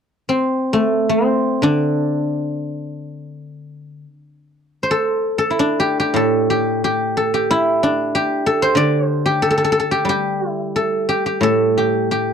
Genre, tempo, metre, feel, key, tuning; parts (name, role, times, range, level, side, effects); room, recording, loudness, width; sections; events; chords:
chinese traditional, Chinese solo plucked strings; 69-96 BPM; 2/4; rubato; D shang mode; A4 = 441 Hz
guzheng; solo; 0.3-12.3 s; A2 to D5; -16 LUFS; equal
light reverb; dry, close 1970s-style studio recording; -16 LUFS; side -7 dB against mid
0.0-6.2 A section; 6.2-12.3 B section